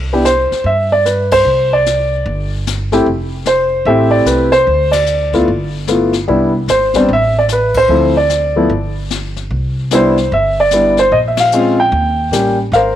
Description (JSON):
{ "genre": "jazz piano trio", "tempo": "149 BPM", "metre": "4/4", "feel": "swing 64% on 8ths", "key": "C major", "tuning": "A4 = 440 Hz", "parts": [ { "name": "upright bass", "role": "bass", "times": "0.0-13.0 s", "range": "F1 to G2", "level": "-19 LUFS", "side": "equal", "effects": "none" }, { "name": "warm grand piano", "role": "melody", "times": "0.1-13.0 s", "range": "F3 to G5", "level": "-11 LUFS", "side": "equal", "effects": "none" }, { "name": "jazz brush drum kit", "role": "drums", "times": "0.3-13.0 s", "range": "brushed snare drum, hi-hat, kick drum, ride cymbal, snare drum", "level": "-25 LUFS", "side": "left 7 dB", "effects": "none" } ], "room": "light reverb, small room ambience", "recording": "1960s-style stereo", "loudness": "-11 LUFS", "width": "side -11 dB against mid", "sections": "0.0-12.7 A section", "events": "band accent 1.3, 4.9, 7.7, 11.3", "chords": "0.0 Cmaj7; 1.5 Csus2; 3.1 Fmaj9; 4.7 N.C.; 5.5 G13; 6.3 Cmaj9; 7.1 Asus2; 7.9 Dm7; 8.7 N.C.; 9.5 Cmaj9; 11.1 Bbm7; 11.9 Eb7" }